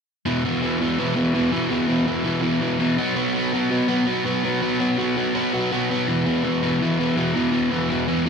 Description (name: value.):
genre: punk.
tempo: 165 BPM.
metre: 4/4.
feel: straight.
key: unclear.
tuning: A4 = 440 Hz.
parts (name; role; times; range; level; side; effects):
crunchy overdriven guitar; solo; 0.3-8.3 s; E2 to B3; -19 LUFS; equal; none.
room: light reverb.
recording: live gig heard through the venue's PA, club reverb.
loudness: -19 LUFS.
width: side -6 dB against mid.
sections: 0.3-8.3 A section.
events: none.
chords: 0.3 E5; 3.0 B5; 6.1 E5.